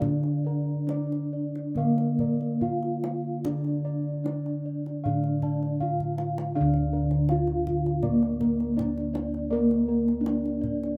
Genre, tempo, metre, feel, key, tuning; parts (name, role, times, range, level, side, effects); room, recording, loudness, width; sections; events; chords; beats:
Javanese gamelan; 66-81 BPM; 4/4; straight; A4 = 440 Hz
gamelan-type bronze metallophone; melody; 0.0-11.0 s; Bb3 to F4; -32 LUFS; equal
gamelan-type bronze metallophone; accompaniment; 0.0-11.0 s; D3 to Bb3; -31 LUFS; equal
gamelan-type bossed gongs; arpeggios; 0.0-10.7 s; Bb4 to A5; -42 LUFS; equal
gamelan-type bronze metallophone; arpeggios; 0.0-11.0 s; Bb4 to F5; -41 LUFS; equal
gamelan-type bossed gongs; bass; 0.0-11.0 s; D2 to Bb4; -35 LUFS; equal
kendang; percussion; 0.0-10.9 s; -40 LUFS; equal
light reverb, small room ambience; rough home demo mix; -27 LUFS; mono
0.0-6.6 A section; 6.6-11.0 B section
drum fill 5.8-6.6
| 0.02 0.91 1.78 2.63 | 3.45 4.25 5.04 5.81 | 6.56 7.30 8.04 8.78 | 9.52 10.26